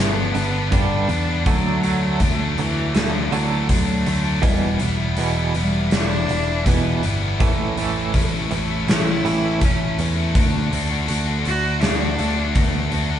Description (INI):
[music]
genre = quiet-loud alternative rock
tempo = 81 BPM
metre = 4/4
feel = straight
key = unclear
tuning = A4 = 441 Hz
[part]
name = bright cello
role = melody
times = 0.0-12.9 s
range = D3 to F#4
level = -25 LUFS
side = equal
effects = none
[part]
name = twangy electric guitar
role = arpeggios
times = 0.0-10.3 s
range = E2 to A3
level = -27 LUFS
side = right 6 dB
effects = tremolo
[part]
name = high-gain distorted guitar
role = riff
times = 0.0-13.2 s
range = G2 to F#4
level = -24 LUFS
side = left 3 dB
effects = distortion
[part]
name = picked electric bass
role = bass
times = 0.0-13.2 s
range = E1 to E2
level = -23 LUFS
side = equal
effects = none
[part]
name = big rock drum kit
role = drums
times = 0.3-13.1 s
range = hi-hat, kick drum, snare drum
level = -22 LUFS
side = equal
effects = none
[sound]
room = moderate stone room reverb, RT60 1.3 s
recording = band playing live in one room, nothing above 10.9 kHz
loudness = -18 LUFS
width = side -10 dB against mid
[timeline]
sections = 0.0-13.2 A section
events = half time 0.0-13.2; cello solo 0.0-13.2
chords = 0.0 G; 1.5 D; 4.4 Em7; 7.4 A; 10.4 D